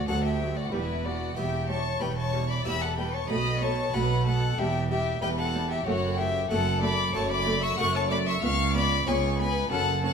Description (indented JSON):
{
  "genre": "classical, baroque-style concerto movement with solo episodes",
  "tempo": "94 BPM",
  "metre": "4/4",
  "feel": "straight",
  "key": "unclear",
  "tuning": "A4 = 438 Hz",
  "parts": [
    { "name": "warm chamber violin section", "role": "melody", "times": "0.0-10.1 s", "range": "E5 to F#6", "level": "-34 LUFS", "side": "left 3 dB", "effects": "none" },
    { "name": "warm violin", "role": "melody", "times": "0.0-10.1 s", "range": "B4 to C#6", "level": "-32 LUFS", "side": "left 4 dB", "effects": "none" },
    { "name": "rich chamber violin section", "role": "second line", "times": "0.0-10.1 s", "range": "E4 to F#5", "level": "-32 LUFS", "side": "left 5 dB", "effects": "none" },
    { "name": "harpsichord", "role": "accompaniment", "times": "0.1-10.1 s", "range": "C#2 to A4", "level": "-35 LUFS", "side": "equal", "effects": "none" },
    { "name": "rich chamber viola section", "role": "accompaniment", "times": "0.1-10.1 s", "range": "F#3 to C#4", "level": "-35 LUFS", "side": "right 1 dB", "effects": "none" },
    { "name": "rich chamber double bass section", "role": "bass", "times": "0.1-10.1 s", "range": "E1 to D2", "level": "-31 LUFS", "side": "right 3 dB", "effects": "none" },
    { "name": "warm chamber cello section", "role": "bass", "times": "0.1-10.1 s", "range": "C#2 to B2", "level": "-32 LUFS", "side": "right 4 dB", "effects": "none" }
  ],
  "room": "wet recital hall reverb, RT60 1.3 s",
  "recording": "none",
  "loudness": "-24 LUFS",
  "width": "side -6 dB against mid",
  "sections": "0.0-10.1 A section",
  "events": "none",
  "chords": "0.0 D; 0.7 Em; 3.3 B5; 4.6 Em; 5.9 F#m; 8.4 C#5"
}